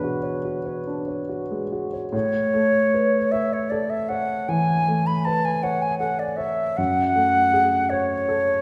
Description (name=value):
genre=classical, impressionist duo for flute and grand piano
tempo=46-54 BPM (dotted quarters)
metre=12/8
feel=rubato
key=A major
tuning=A4 = 439 Hz
part: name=mellow silver concert flute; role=melody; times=0.0-8.6 s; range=B4 to B5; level=-24 LUFS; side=equal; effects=none
part: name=warm grand piano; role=accompaniment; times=0.0-8.6 s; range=F#2 to C#5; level=-28 LUFS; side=equal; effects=none
room=wet recital hall reverb, RT60 1.5 s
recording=heard from further back in the room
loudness=-23 LUFS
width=mono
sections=0.0-2.1 A section; 2.1-8.6 B section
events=none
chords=0.0 E13; 2.1 Aadd9; 6.8 F#madd9